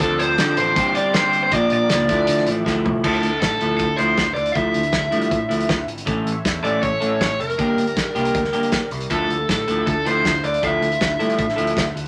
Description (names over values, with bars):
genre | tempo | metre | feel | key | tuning
indie rock | 158 BPM | 4/4 | straight | D minor | A4 = 440 Hz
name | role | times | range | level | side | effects
raw garage guitar | melody | 0.0-12.0 s | A4 to E5 | -23 LUFS | equal | overdrive
warm analog pad | sustained chords | 0.0-12.1 s | D3 to D6 | -34 LUFS | equal | none
electric guitar through a small old amp | riff | 0.0-11.8 s | E3 to A4 | -24 LUFS | equal | none
growling picked electric bass | bass | 0.0-12.1 s | F1 to D3 | -31 LUFS | equal | overdrive
loose indie drum kit | drums | 0.0-12.1 s | crash cymbal, hi-hat, kick drum, snare drum, toms | -27 LUFS | equal | none
room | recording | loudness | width
moderate studio reverb, RT60 0.8 s | none | -20 LUFS | mono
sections
0.0-3.0 A section; 3.0-12.1 B section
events
drum fill 2.7-3.0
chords
0.0 Dm7; 0.8 Gsus4; 1.5 Bb; 2.1 Dmadd9; 6.1 A; 7.6 Gm; 9.1 Dmadd9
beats
| 0.00 0.38 0.76 1.14 | 1.52 1.90 2.28 2.65 | 3.04 3.42 3.79 4.17 | 4.55 4.93 5.31 5.69 | 6.07 6.45 6.83 7.21 | 7.59 7.97 8.35 8.73 | 9.11 9.49 9.87 10.25 | 10.63 11.01 11.38 11.76